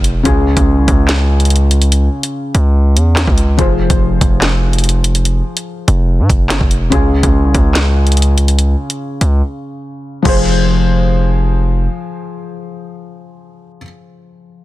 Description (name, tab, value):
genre	hip hop, drill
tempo	144 BPM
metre	4/4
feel	half-time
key	F minor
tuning	A4 = 440 Hz
part	felt-muted upright piano	accompaniment	0.0-14.6 s	Db3 to C5	-18 LUFS	left 2 dB	none
part	distorted 808-style bass	bass	0.0-11.9 s	E1 to Ab2	-12 LUFS	equal	distortion
part	drill drum kit	drums	0.0-10.3 s	crash cymbal, handclaps, hi-hat, kick drum, snare drum	-15 LUFS	equal	none
room	little or no reverb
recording	dense, heavily limited modern master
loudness	-10 LUFS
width	side -16 dB against mid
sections	0.0-10.3 A section; 10.3-13.6 B section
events	break 9.4-10.3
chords	0.3 Db; 3.6 Fm; 6.9 Db; 10.3 Fm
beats	| 0.25 0.67 1.09 1.50 | 1.92 2.34 2.75 3.17 | 3.59 4.00 4.42 4.84 | 5.25 5.67 6.09 6.50 | 6.92 7.34 7.75 8.17 | 8.59 9.00 9.42 9.84 | 10.25 10.67 11.09 11.50 | 11.92 12.34 12.75 13.17